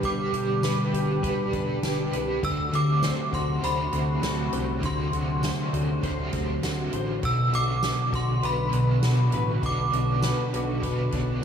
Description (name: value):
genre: dream pop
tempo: 100 BPM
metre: 4/4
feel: straight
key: unclear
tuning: A4 = 440 Hz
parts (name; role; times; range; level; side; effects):
- synth chime; melody; 0.0-11.4 s; B5 to E6; -30 LUFS; right 1 dB; ensemble chorus, digital delay
- raw garage guitar; accompaniment; 0.0-11.4 s; B2 to C5; -34 LUFS; right 4 dB; overdrive, tremolo, analog chorus
- warm analog pad; sustained chords; 0.0-11.4 s; B2 to G4; -30 LUFS; right 1 dB; chorus, phaser
- direct-recorded clean electric guitar; arpeggios; 0.0-11.4 s; B2 to C5; -31 LUFS; left 4 dB; ensemble chorus, digital delay
- fat analog bass; bass; 0.0-11.4 s; G1 to D2; -28 LUFS; equal; none
- soft-mallet drum kit; drums; 0.0-11.3 s; hi-hat, kick drum, snare drum, tambourine; -32 LUFS; equal; none
room: light reverb, small room ambience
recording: none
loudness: -23 LUFS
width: side -8 dB against mid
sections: 0.0-11.4 A section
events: none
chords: 0.0 G; 2.4 D7; 7.2 Bm